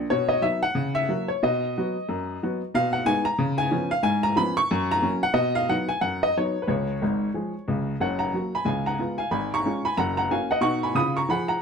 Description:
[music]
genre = jazz, stride piano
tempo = 182 BPM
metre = 4/4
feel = swing 60% on 8ths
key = F# major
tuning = A4 = 440 Hz
[part]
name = warm upright piano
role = solo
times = 0.0-11.6 s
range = F#1 to D#6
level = -22 LUFS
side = equal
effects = none
[sound]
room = moderate club reverb, RT60 0.9 s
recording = none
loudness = -22 LUFS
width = side -6 dB against mid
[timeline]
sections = 0.0-8.0 A section; 8.0-11.6 B section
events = none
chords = 0.1 B; 0.8 F#7/C#; 1.4 B; 2.7 G#m/B; 3.4 C#7; 4.0 C#7/G#; 4.7 F#; 5.4 B; 6.7 C#; 8.0 F#; 8.7 C#7; 9.3 C#/G#; 10.0 F#; 10.6 B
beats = | 0.10 0.43 0.76 1.09 | 1.42 1.75 2.08 2.40 | 2.73 3.06 3.39 3.72 | 4.05 4.38 4.71 5.04 | 5.37 5.70 6.02 6.35 | 6.68 7.01 7.34 7.67 | 8.00 8.33 8.66 8.99 | 9.31 9.64 9.97 10.30 | 10.63 10.96 11.29

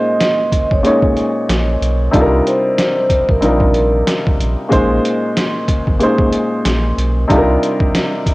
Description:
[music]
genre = hip hop, boom-bap hip-hop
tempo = 93 BPM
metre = 4/4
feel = swing 59% on 16ths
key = Bb dorian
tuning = A4 = 440 Hz
[part]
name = vibraphone with soft mallets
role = melody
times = 0.0-4.0 s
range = Bb4 to Eb5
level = -18 LUFS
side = right 1 dB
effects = high-pass filter, low-pass filter, cassette tape
[part]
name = dark upright piano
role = accompaniment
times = 0.0-8.3 s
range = Bb2 to Db5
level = -15 LUFS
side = equal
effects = cassette tape, high-pass filter, low-pass filter
[part]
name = trip hop sampler-style drum kit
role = drums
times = 0.2-8.3 s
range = hi-hat, kick drum, snare drum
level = -17 LUFS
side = equal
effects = overdrive, cassette tape
[part]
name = warm sub bass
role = bass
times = 0.7-7.6 s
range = Ab1 to C2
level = -17 LUFS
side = equal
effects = none
[sound]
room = light reverb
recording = home recording on cassette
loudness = -12 LUFS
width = side -20 dB against mid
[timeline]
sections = 0.0-8.3 A section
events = none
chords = 0.0 Bbm11; 2.1 Cm11; 4.7 Bbm11; 7.3 Cm11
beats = 0.20 0.84 1.49 | 2.13 2.78 3.43 4.07 | 4.72 5.36 6.01 6.65 | 7.30 7.94

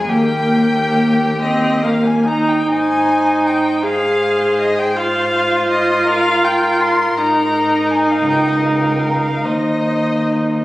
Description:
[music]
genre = classical, slow romantic movement for string quartet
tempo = 46-55 BPM (dotted quarters)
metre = 6/8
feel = rubato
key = Ab major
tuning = A4 = 439 Hz
[part]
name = muted violin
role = melody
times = 0.0-10.6 s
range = Eb5 to C6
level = -20 LUFS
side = left 2 dB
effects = none
[part]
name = muted violin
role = second line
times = 0.0-10.6 s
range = G4 to C5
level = -22 LUFS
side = equal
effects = none
[part]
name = muted viola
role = accompaniment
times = 0.0-10.6 s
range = Ab3 to Ab4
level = -16 LUFS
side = equal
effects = none
[part]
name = muted cello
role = bass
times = 0.0-10.6 s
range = Db2 to Ab2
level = -22 LUFS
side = equal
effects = none
[sound]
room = moderate recital hall reverb, RT60 1.5 s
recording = recorded on a phone in the room, studio reverb, compression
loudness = -13 LUFS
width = side -17 dB against mid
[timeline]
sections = 0.0-2.7 A section; 2.7-10.6 B section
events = none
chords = 0.1 Eb; 2.7 Ab; 5.0 Ab69; 7.2 Ab5; 8.3 Bbm/Db; 9.5 Cm/Eb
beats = | 0.11 1.41 | 2.67 3.83 | 4.96 6.08 | 7.17 8.29 | 9.45

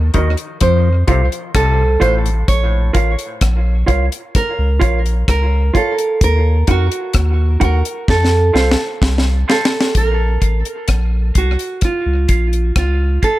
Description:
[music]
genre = dub reggae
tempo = 64 BPM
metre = 4/4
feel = straight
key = Bb harmonic minor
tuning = A4 = 440 Hz
[part]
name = nylon-string guitar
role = melody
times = 0.0-13.4 s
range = F4 to Db5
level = -20 LUFS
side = right 3 dB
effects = tape echo
[part]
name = warm sub bass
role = bass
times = 0.0-13.2 s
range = A1 to F2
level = -15 LUFS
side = equal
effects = none
[part]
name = mellow electric guitar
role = accompaniment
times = 0.1-13.4 s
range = Eb4 to Gb5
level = -23 LUFS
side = right 3 dB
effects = high-pass filter, tape echo
[part]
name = overdriven clav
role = riff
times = 0.1-2.3 s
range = A2 to F3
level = -23 LUFS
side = left 6 dB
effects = tape echo
[part]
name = deep reggae drum kit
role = drums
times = 0.1-13.4 s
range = hi-hat, kick drum, rim click, snare drum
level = -16 LUFS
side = equal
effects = none
[part]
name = mellow tonewheel organ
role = accompaniment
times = 10.2-13.3 s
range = none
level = barely audible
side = none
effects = none
[sound]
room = small room ambience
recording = none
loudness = -13 LUFS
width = side -16 dB against mid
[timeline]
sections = 0.0-9.9 A section; 9.9-13.4 B section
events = break 0.0-9.9; filter sweep 6.2-13.4; drum fill 8.1-9.9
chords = 0.0 Ebm; 0.6 F; 2.5 Bbm; 6.2 Ebm; 8.1 F; 9.9 Bbm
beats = 0.61 1.54 | 2.48 3.41 4.34 5.28 | 6.21 7.15 8.08 9.01 | 9.95 10.88 11.82 12.76

